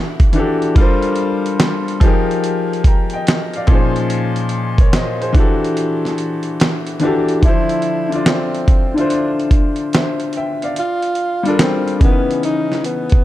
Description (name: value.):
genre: lo-fi hip hop.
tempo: 72 BPM.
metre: 4/4.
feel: swing 66% on 16ths.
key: unclear.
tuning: A4 = 440 Hz.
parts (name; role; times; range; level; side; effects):
clear upright piano; accompaniment; 0.0-13.2 s; Bb2 to Bb5; -18 LUFS; left 2 dB; none.
dusty soul sampler-style drum kit; drums; 0.2-13.2 s; hi-hat, kick drum, snare drum; -15 LUFS; equal; none.
breathy tenor saxophone; melody; 7.5-13.2 s; B3 to F4; -21 LUFS; equal; tape echo.
room: light reverb.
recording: dark, warm production.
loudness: -14 LUFS.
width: side -14 dB against mid.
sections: 0.0-7.4 A section; 7.4-13.2 B section.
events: kick muted 5.8-7.4.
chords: 0.0 Em11; 0.8 Gm11; 2.0 Fm11; 3.7 Bbm11; 5.3 Em11; 7.4 Dm9; 10.8 Gm9; 12.0 C#m9.